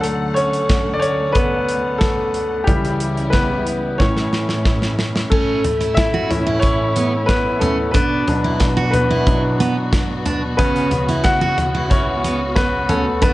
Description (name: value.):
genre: piano-driven pop.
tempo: 91 BPM.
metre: 4/4.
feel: straight.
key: unclear.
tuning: A4 = 438 Hz.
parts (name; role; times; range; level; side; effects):
clear baby grand piano; accompaniment; 0.0-13.3 s; A2 to F#5; -18 LUFS; left 1 dB; none.
warm studio string section; sustained chords; 0.0-13.3 s; C#2 to F#5; -25 LUFS; equal; none.
modern studio drum kit; drums; 0.0-13.3 s; crash cymbal, hi-hat, kick drum, snare drum, toms; -20 LUFS; equal; none.
picked steel-string acoustic guitar; riff; 5.3-13.3 s; B3 to F#4; -22 LUFS; right 4 dB; none.
room: light reverb, small room ambience.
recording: worn, warbling old tape, cassette tape, warbly pitch drift, nothing above 10.6 kHz.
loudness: -15 LUFS.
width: side -17 dB against mid.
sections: 0.0-5.3 A section; 5.3-13.3 B section.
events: grand piano solo 0.0-5.3, 5.3-13.3; drum fill 4.0-5.3.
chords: 0.0 D; 2.7 C#dim; 4.0 A; 8.0 Bm; 10.6 F#sus4/C#.